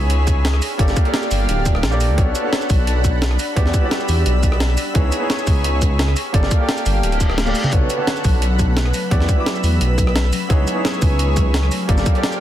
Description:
liquid drum and bass; 173 BPM; 4/4; straight; A4 = 439 Hz
clear grand piano; accompaniment; 0.0-12.4 s; D3 to D6; -25 LUFS; right 1 dB; dub echo
lush unison pad; sustained chords; 0.0-12.4 s; G3 to E6; -26 LUFS; equal; chorus, sidechain pumping
dark detuned saw bass; bass; 0.0-12.0 s; D1 to E2; -18 LUFS; equal
jungle sampler-style drum kit; drums; 0.1-12.4 s; hi-hat, rim click, shaker, snare drum, toms; -23 LUFS; equal
electronic kick drum; drums; 0.3-12.1 s; -17 LUFS; equal; overdrive
reverse cymbal; sound effects; 7.2-7.7 s; -32 LUFS; left 2 dB
concert harp; arpeggios; 7.7-12.4 s; F#3 to C#4; -25 LUFS; left 1 dB; dub echo
little or no reverb; dense, heavily limited modern master; -15 LUFS; side -12 dB against mid
0.0-12.4 A section
reverse cymbal 7.2-7.7; kick drops out 7.4-7.7; drum fill 7.4-7.7
0.0 C#m7; 0.6 Gm7; 2.2 Bm7; 3.4 Em7; 5.0 C#m7; 6.2 Gm7; 7.7 Bm7; 8.9 Em7; 10.5 C#m7; 11.7 Gm7
0.10 0.44 | 0.79 1.14 1.49 1.83 | 2.18 2.52 2.87 3.22 | 3.56 3.91 4.26 4.61 | 4.95 5.30 5.65 5.99 | 6.34 6.69 7.03 7.38 | 7.73 8.07 8.42 8.77 | 9.12 9.46 9.81 10.15 | 10.50 10.85 11.20 11.54 | 11.89 12.24

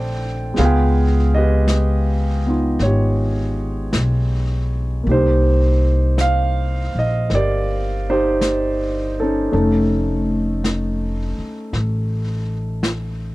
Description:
jazz ballad; 54 BPM; 4/4; swing 68% on 8ths; A4 = 440 Hz
warm concert grand piano; accompaniment; 0.0-13.3 s; D3 to G5; -20 LUFS; right 1 dB
upright bass; bass; 0.0-13.3 s; F1 to Db2; -19 LUFS; equal
vintage brush drum kit; drums; 0.6-13.3 s; brushed snare drum, hi-hat, snare drum; -27 LUFS; equal
small room ambience; dry, close 1970s-style studio recording; -16 LUFS; side -18 dB against mid
0.0-13.3 A section
0.0 Dm7; 0.6 Db7#11; 5.1 Cm7; 9.5 Faug7
| 0.57 1.68 2.80 3.92 | 5.06 6.18 7.30 8.41 | 9.53 10.64 11.74 12.84

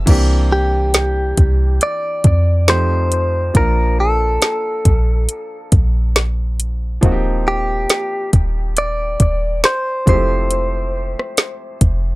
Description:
contemporary R&B; 69 BPM; 4/4; swing 58% on 16ths; A4 = 439 Hz
clear baby grand piano; accompaniment; 0.0-12.2 s; E3 to G4; -24 LUFS; equal
clean 808-style bass; bass; 0.0-12.2 s; Eb1 to F2; -16 LUFS; equal
smooth R&B drum kit; drums; 0.1-12.0 s; crash cymbal, hi-hat, kick drum, rim click, snare drum; -14 LUFS; equal
direct-recorded clean electric guitar; melody; 0.5-11.8 s; G4 to D5; -19 LUFS; equal; ping-pong delay
little or no reverb; -14 LUFS; side -20 dB against mid
0.1-12.2 A section
0.1 C9; 2.7 F9; 3.5 Bbmaj7; 7.0 Eb69; 10.1 Fmaj9
| 0.07 0.94 1.81 2.68 | 3.55 4.42 5.29 6.16 | 7.03 7.90 8.77 9.64 | 10.51 11.38

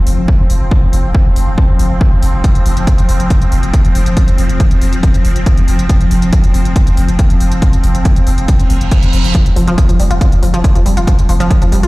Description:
driving peak-time techno; 139 BPM; 4/4; straight; A4 = 443 Hz
saturated sub bass; bass; 0.0-11.9 s; F1; -14 LUFS; equal; overdrive, sidechain pumping, low-pass filter
swarming drone; drone; 0.0-11.9 s; F3 to C4; -19 LUFS; left 1 dB; built-in reverb, sidechain pumping
electronic hi-hat; drums; 0.1-11.9 s; -28 LUFS; equal; overdrive, sidechain pumping on hats
electronic kick drum; drums; 0.3-11.6 s; -11 LUFS; equal; overdrive
reverse cymbal; sound effects; 8.7-9.3 s; -23 LUFS; right 6 dB
analog pluck; riff; 9.3-11.9 s; F3 to F4; -16 LUFS; equal; chorus, tube saturation, sidechain pumping, dub echo
little or no reverb; played on a big sound system in a bare room, large studio reverb; -9 LUFS; side -20 dB against mid
0.0-11.9 A section
reverse cymbal 8.7-9.3
0.0 F5
0.28 | 0.71 1.15 1.58 2.01 | 2.44 2.87 3.30 3.74 | 4.17 4.60 5.03 5.46 | 5.89 6.33 6.76 7.19 | 7.62 8.05 8.48 8.92 | 9.35 9.78 10.21 10.64 | 11.07 11.51

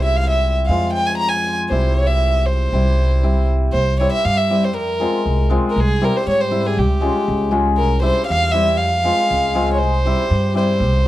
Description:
klezmer; 119 BPM; 2/4; straight; C phrygian dominant; A4 = 440 Hz
dark violin; melody; 0.0-11.1 s; G4 to Bb5; -19 LUFS; right 1 dB
hammered dulcimer; accompaniment; 0.0-11.1 s; G3 to F4; -21 LUFS; left 2 dB
upright bass; bass; 0.0-11.1 s; C2 to Ab2; -18 LUFS; equal
moderate small room reverb, RT60 0.5 s; dark, warm production; -15 LUFS; side -15 dB against mid
0.0-3.7 A section; 3.7-11.1 A section
0.0 C; 0.7 Fm; 1.7 C; 4.8 Fm; 5.8 C; 6.8 Db; 7.8 C; 8.8 Fm; 9.8 C
0.19 | 0.69 1.20 | 1.71 2.22 | 2.73 3.23 | 3.74 4.25 | 4.75 5.26 | 5.76 6.27 | 6.77 7.28 | 7.78 8.29 | 8.79 9.29 | 9.80 10.30 | 10.80

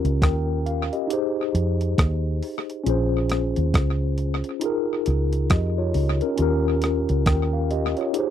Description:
lovers rock reggae; 68 BPM; 4/4; swing 60% on 16ths; A4 = 439 Hz
mellow tine electric piano; accompaniment; 0.0-8.3 s; Db4 to G5; -24 LUFS; left 2 dB; medium stereo tremolo
vintage muted fingered electric bass; bass; 0.0-7.9 s; Bb1 to F2; -23 LUFS; right 1 dB
crisp 8-bit digital drum machine; drums; 0.0-8.3 s; hi-hat, kick drum, rim click; -23 LUFS; right 1 dB; tape echo
little or no reverb; dry, close 1970s-style studio recording; -20 LUFS; side -10 dB against mid
0.0-8.3 A section
0.0 Eb7; 1.1 Fm7; 2.9 Bbm7; 4.6 Db6; 6.4 Eb7
0.21 1.10 1.98 | 2.86 3.74 4.62 5.51 | 6.39 7.27 8.14

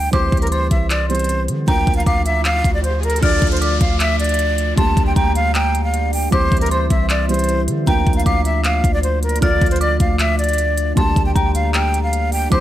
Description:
hip hop, trap; 155 BPM; 4/4; half-time; D minor; A4 = 443 Hz
breathy concert flute; melody; 0.0-12.6 s; Bb4 to A5; -20 LUFS; equal; digital delay
felt-muted upright piano; accompaniment; 0.0-12.6 s; D3 to Bb4; -25 LUFS; right 3 dB
long sustained 808-style bass; bass; 0.0-12.6 s; C2 to D3; -19 LUFS; equal
dark detuned synth bell; second line; 0.1-12.6 s; Bb5 to F6; -27 LUFS; left 2 dB; chorus, digital delay
trap drum kit; drums; 0.1-12.6 s; handclaps, hi-hat, kick drum; -19 LUFS; equal; overdrive
riser and downlifter; sound effects; 1.5-6.3 s; -30 LUFS; equal
glass harmonica; sustained chords; 3.2-12.6 s; A3 to E5; -28 LUFS; left 1 dB
digital ambience; -14 LUFS; side -13 dB against mid
0.0-3.2 A section; 3.2-12.6 B section
riser 1.5-3.2
0.1 C; 1.7 Bb/D; 3.2 Dm; 4.8 Gm/D; 6.3 C; 7.9 Bb/D; 9.4 Dm; 11.0 Gm/D
| 0.13 0.52 0.90 1.29 | 1.68 2.07 2.45 2.84 | 3.23 3.61 4.00 4.39 | 4.78 5.16 5.55 5.94 | 6.32 6.71 7.10 7.49 | 7.87 8.26 8.65 9.03 | 9.42 9.81 10.20 10.58 | 10.97 11.36 11.74 12.13 | 12.52

